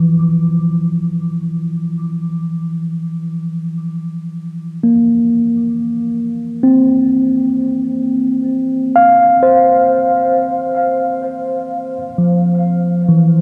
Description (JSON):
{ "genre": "ambient", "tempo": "free time", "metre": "none", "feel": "none", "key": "G dorian", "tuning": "A4 = 441 Hz", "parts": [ { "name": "mellow tine electric piano", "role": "solo", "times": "0.0-13.4 s", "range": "E3 to D6", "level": "-15 LUFS", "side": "equal", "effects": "diffuse ambient delay" } ], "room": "wet huge ambient reverb, RT60 9.0 s", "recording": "dark, warm production", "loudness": "-15 LUFS", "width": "mono", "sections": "0.0-13.4 A section", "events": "none", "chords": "0.0 Gm7 (rootless)", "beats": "free time" }